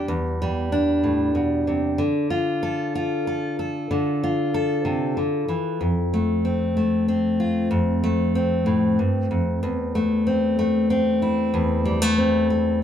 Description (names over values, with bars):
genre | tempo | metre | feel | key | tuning
folk | 63 BPM (dotted quarters) | 6/8 | straight | unclear | A4 = 437 Hz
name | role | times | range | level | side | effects
fingerpicked steel-string acoustic guitar | solo | 0.0-12.8 s | E2 to A4 | -20 LUFS | equal | none
room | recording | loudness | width
wet studio reverb, RT60 0.5 s | band playing live in one room | -20 LUFS | side -9 dB against mid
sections
0.0-12.8 A section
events
none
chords
0.0 Em7; 2.0 Dm; 5.8 F; 9.6 C6/E